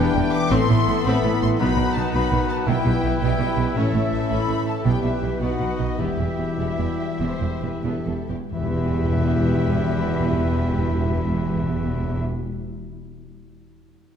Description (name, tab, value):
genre	cinematic, heroic adventure film score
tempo	87-112 BPM (dotted quarters)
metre	12/8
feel	straight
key	E minor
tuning	A4 = 440 Hz
part	warm symphonic violin section	melody	0.0-12.2 s	C#5 to D6	-33 LUFS	left 6 dB	none
part	small flute group	second line	0.0-12.2 s	C#5 to D6	-34 LUFS	left 4 dB	none
part	warm clarinet	second line	0.0-12.2 s	B3 to G4	-33 LUFS	left 1 dB	none
part	warm oboe	second line	0.0-12.2 s	D#5 to G5	-35 LUFS	equal	none
part	warm symphonic violin section	second line	0.0-12.2 s	E4 to E5	-35 LUFS	left 3 dB	none
part	rich studio viola section	accompaniment	0.0-12.2 s	D#3 to E4	-31 LUFS	right 2 dB	none
part	clear trombone section	sustained chords	0.0-12.2 s	B2 to F#4	-33 LUFS	right 3 dB	none
part	mellow French horn section	sustained chords	0.0-12.2 s	B2 to F#4	-30 LUFS	left 3 dB	none
part	concert harp	arpeggios	0.0-12.5 s	A2 to B5	-30 LUFS	left 10 dB	none
part	mellow trumpet section	stabs	0.0-12.2 s	G4 to B4	-33 LUFS	left 2 dB	none
part	rich symphonic cello section	bass	0.0-12.2 s	E2 to B2	-27 LUFS	right 3 dB	none
part	rich symphonic double bass section	bass	0.0-12.2 s	E1 to B1	-26 LUFS	right 3 dB	none
part	timpani	percussion	2.7-3.2, 8.5-12.2 s	E2 to B2	-26 LUFS	left 1 dB	none
room	moderate scoring stage reverb, RT60 1.6 s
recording	dark, warm production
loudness	-20 LUFS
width	side -8 dB against mid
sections	0.0-8.5 A section; 8.5-14.0 B section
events	slowing down 4.5-8.5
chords	0.0 Em7; 0.5 Amadd9; 1.6 B; 2.7 Em/B; 3.8 A; 4.9 Em/B; 5.4 B; 6.0 Em